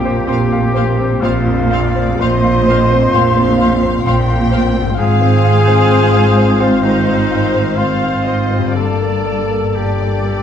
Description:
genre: cinematic, emotional film score for orchestra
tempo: 60-66 BPM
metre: 4/4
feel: rubato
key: unclear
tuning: A4 = 442 Hz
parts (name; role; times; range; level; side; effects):
- mellow clarinet; second line; 0.0-10.4 s; Eb4 to C5; -21 LUFS; left 2 dB; none
- silver concert flute; second line; 0.0-10.4 s; Eb5 to C6; -22 LUFS; left 2 dB; none
- warm oboe; second line; 0.0-10.4 s; Eb4 to C5; -25 LUFS; equal; none
- warm symphonic violin section; second line; 0.0-10.4 s; Bb4 to G5; -26 LUFS; left 2 dB; none
- bright concert grand piano; accompaniment; 0.0-10.4 s; Bb1 to C6; -22 LUFS; left 3 dB; none
- mellow French horn section; sustained chords; 0.0-10.4 s; Bb2 to A4; -22 LUFS; left 4 dB; none
- concert harp; arpeggios; 0.0-10.4 s; G2 to F5; -24 LUFS; left 10 dB; none
- dark chamber cello section; bass; 0.0-10.4 s; G2 to Bb2; -18 LUFS; right 2 dB; none
- warm symphonic double bass section; bass; 0.0-10.4 s; G1 to Bb1; -18 LUFS; right 4 dB; none
- rich studio violin section; melody; 0.3-10.4 s; D5 to F5; -26 LUFS; left 5 dB; none
- warm symphonic viola section; accompaniment; 0.3-10.4 s; Bb3 to C5; -23 LUFS; right 2 dB; none
room: moderate scoring stage reverb, RT60 1.6 s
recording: dark, warm production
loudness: -11 LUFS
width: side -8 dB against mid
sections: 0.0-10.4 A section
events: none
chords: 0.0 Bbsus2; 5.0 Ab6; 8.8 Gmadd9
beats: 0.28 | 1.22 2.20 3.14 4.06 | 4.98 5.91 6.83 7.77 | 8.75 9.74

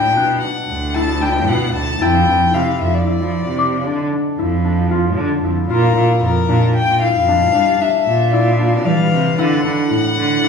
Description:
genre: contemporary instrumental, chamber music in an uneven meter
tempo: 114 BPM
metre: 7/4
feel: straight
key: unclear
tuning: A4 = 440 Hz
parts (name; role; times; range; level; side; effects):
- warm violin; melody; 0.0-10.5 s; Bb4 to A5; -18 LUFS; left 5 dB; none
- concert harp; arpeggios; 0.0-10.5 s; E3 to F#4; -20 LUFS; left 4 dB; none
- rich cello; bass; 0.0-10.4 s; D2 to G3; -17 LUFS; right 2 dB; none
- small celesta; texture; 0.0-5.1 s; D6 to A6; -24 LUFS; left 5 dB; none
room: wet recital hall reverb, RT60 1.5 s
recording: recorded in a church or concert hall, small room ambience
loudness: -14 LUFS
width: side -6 dB against mid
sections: 0.0-10.5 A section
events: none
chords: 0.0 D; 2.0 F; 5.7 Bb; 9.4 D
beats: 0.43 0.95 1.48 | 2.01 2.54 3.06 3.59 4.12 4.64 5.17 | 5.70 6.22 6.75 7.28 7.80 8.33 8.86 | 9.38 9.91 10.44

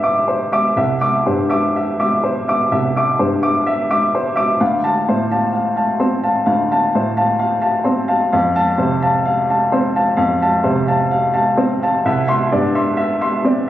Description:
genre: neoclassical minimalist piano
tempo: 64 BPM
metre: 4/4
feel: rubato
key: C major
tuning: A4 = 442 Hz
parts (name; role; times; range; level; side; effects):
- warm upright piano; solo; 0.0-13.7 s; C2 to D6; -14 LUFS; equal; none
room: moderate recital hall reverb, RT60 1.4 s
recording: recorded on a phone in the room, studio reverb, compression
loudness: -14 LUFS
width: side -13 dB against mid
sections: 0.0-13.7 A section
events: none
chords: 0.0 Cadd9; 4.6 Dm7; 8.3 F; 12.1 Cadd9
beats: | 0.78 1.75 2.71 3.67 | 4.61 5.54 6.47 7.40 | 8.34 9.28 10.21 11.14 | 12.06 12.99

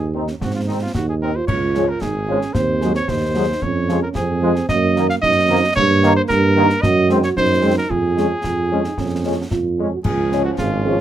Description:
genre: military-style march for wind band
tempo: 112 BPM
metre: 2/4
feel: straight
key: Db major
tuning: A4 = 438 Hz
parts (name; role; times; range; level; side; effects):
- warm cornet; melody; 0.0-11.0 s; Eb4 to F5; -21 LUFS; equal; none
- dark euphonium; second line; 0.0-11.0 s; Bb3 to Ab4; -24 LUFS; right 4 dB; none
- mellow tuba; bass; 0.0-11.0 s; Ab1 to Ab2; -20 LUFS; right 3 dB; none
- mellow French horn section; accompaniment; 0.1-11.0 s; Eb3 to Ab4; -23 LUFS; left 2 dB; none
- warm trombone section; sustained chords; 0.1-11.0 s; Eb3 to Db4; -22 LUFS; equal; none
- concert snare drum, concert bass drum and clash cymbals; drums; 0.3-10.8 s; none; -27 LUFS; equal; none
room: light reverb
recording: close, detailed microphones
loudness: -15 LUFS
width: side -11 dB against mid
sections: 0.0-10.0 A section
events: none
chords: 0.0 Ab; 1.5 Db; 2.5 Ab7/Eb; 3.6 Db/F; 4.7 Ebm/Gb; 5.8 Eb/G; 6.8 Ab7/Gb; 7.9 Db/F; 10.0 Db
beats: | 0.41 0.94 | 1.48 2.01 | 2.55 3.09 | 3.62 4.16 | 4.69 5.23 | 5.76 6.30 | 6.83 7.37 | 7.91 8.44 | 8.98 9.51 | 10.05 10.59

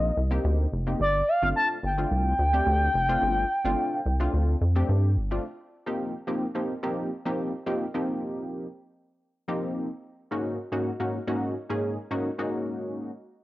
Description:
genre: early-eighties boogie funk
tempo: 108 BPM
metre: 4/4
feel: straight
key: unclear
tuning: A4 = 440 Hz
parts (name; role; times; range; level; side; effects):
- expressive synth lead; melody; 0.0-4.9 s; D5 to A5; -25 LUFS; equal; chorus, cassette tape
- funky polysynth comp; accompaniment; 0.0-13.1 s; Ab2 to Ab4; -29 LUFS; equal; chorus
- rubbery square bass; bass; 0.0-5.4 s; F1 to G2; -24 LUFS; equal; none
room: light reverb, digital ambience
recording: home recording on cassette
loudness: -24 LUFS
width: side -17 dB against mid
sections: 0.0-5.4 A section; 5.4-13.4 B section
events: none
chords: 0.0 F9sus4; 1.0 G9sus4; 5.4 F9sus4; 9.9 Ab9sus4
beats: 0.45 | 1.00 1.56 2.11 2.67 | 3.22 3.78 4.33 4.89 | 5.45 6.00 6.56 7.11 | 7.67 8.22 8.78 9.33 | 9.89 10.45 11.00 11.56 | 12.11 12.67

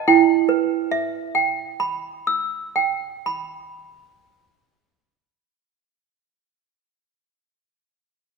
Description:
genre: classical, lullaby for toy piano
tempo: 75 BPM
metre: 3/4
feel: straight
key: E minor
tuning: A4 = 441 Hz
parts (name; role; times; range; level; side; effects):
- toy piano; solo; 0.0-6.3 s; E4 to E6; -19 LUFS; right 6 dB; none
room: wet recital hall reverb, RT60 1.6 s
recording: none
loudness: -19 LUFS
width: side -4 dB against mid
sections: 0.1-4.9 A section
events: none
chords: 0.1 Em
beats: | 0.08 0.88 1.67 | 2.47 3.27 4.07

